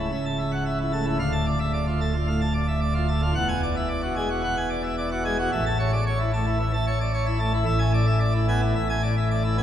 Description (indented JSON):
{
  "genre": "classical, organ toccata",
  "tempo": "111 BPM",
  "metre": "4/4",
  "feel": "straight",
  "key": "A major",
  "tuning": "A4 = 441 Hz",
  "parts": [
    { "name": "pipe organ, plenum", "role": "solo", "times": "0.0-9.6 s", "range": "C#1 to A5", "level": "-22 LUFS", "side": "equal", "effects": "none" }
  ],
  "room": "wet church reverb, RT60 3.1 s",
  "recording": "heard from further back in the room",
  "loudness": "-22 LUFS",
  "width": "side -10 dB against mid",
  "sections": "0.0-9.6 A section",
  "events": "none",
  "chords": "0.0 A/C#; 1.2 Dm; 3.4 E9; 5.5 A; 7.7 E7/A"
}